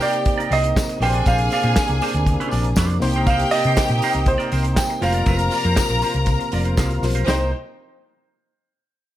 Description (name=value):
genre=disco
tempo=119 BPM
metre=4/4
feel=straight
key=C minor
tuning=A4 = 443 Hz
part: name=clear grand piano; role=melody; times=0.0-7.5 s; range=C5 to G5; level=-24 LUFS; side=right 3 dB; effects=none
part: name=clear studio string section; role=second line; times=0.0-7.5 s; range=Eb4 to Bb5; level=-25 LUFS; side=left 1 dB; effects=none
part: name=barky reed electric piano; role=accompaniment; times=0.0-7.5 s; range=Bb2 to C5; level=-31 LUFS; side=left 3 dB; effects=overdrive, fast tremolo
part: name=semi-hollow electric guitar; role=accompaniment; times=0.0-7.4 s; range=D4 to D5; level=-29 LUFS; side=right 5 dB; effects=phaser
part: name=tonewheel organ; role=sustained chords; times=0.0-7.5 s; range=C3 to F4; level=-28 LUFS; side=equal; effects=overdrive, chorus vibrato, slow rotary speaker
part: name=warm soul drum kit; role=drums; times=0.0-7.4 s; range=handclaps, hi-hat, kick drum, snare drum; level=-23 LUFS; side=equal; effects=none
part: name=tambourine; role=percussion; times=0.0-7.5 s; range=none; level=-36 LUFS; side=left 4 dB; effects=none
part: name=hollow-body short-scale fingered electric bass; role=bass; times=0.5-7.5 s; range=F1 to C3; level=-21 LUFS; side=equal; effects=none
room=studio ambience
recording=none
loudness=-17 LUFS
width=side -13 dB against mid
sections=0.0-7.3 A section; 7.3-9.2 B section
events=none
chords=0.0 Cm7; 1.0 Bbadd9; 3.0 Cm7; 5.0 Fsus4; 7.3 Cm7